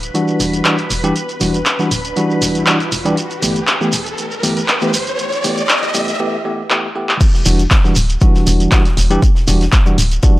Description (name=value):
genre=deep house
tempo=119 BPM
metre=4/4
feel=swing 53% on 16ths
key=E minor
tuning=A4 = 440 Hz
part: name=hollow knocking FM bass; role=bass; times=0.0-10.2 s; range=D1 to C2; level=-18 LUFS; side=equal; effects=tube saturation, sidechain pumping
part: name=punchy analog drum machine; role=drums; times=0.0-10.3 s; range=crash cymbal, handclaps, hi-hat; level=-18 LUFS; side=equal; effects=none
part: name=shekere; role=percussion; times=0.0-10.3 s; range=none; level=-23 LUFS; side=right 2 dB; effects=none
part: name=riser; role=sound effects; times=1.3-6.2 s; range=none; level=-23 LUFS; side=equal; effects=none
part: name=soft string machine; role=texture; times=0.0-6.2 s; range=B4 to B5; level=-27 LUFS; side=equal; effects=phaser, ensemble chorus
part: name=bell-like tine electric piano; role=stabs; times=0.1-10.4 s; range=E3 to G4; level=-18 LUFS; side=equal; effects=fast stereo tremolo, sidechain pumping, tape echo
part: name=deep reggae drum kit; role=drums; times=7.2-10.4 s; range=hi-hat, snare drum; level=-32 LUFS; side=left 2 dB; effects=sidechain pumping on hats, high-pass filter on hats, high-pass filter on snare, high-pass filter on room
part: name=electronic kick drum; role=drums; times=7.2-10.3 s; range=none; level=-12 LUFS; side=equal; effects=overdrive
room=light reverb, small room ambience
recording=dry, gritty hardware recording, high-pass filter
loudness=-12 LUFS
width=side -17 dB against mid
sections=0.0-7.2 A section; 7.2-10.4 B section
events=build-up 0.0-7.2; riser 1.3-6.2; break 6.2-7.2; drum fill 6.7-7.2; drop 7.2-10.4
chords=0.0 Em9; 3.2 G69; 5.2 Fmaj9 (rootless); 7.2 Em9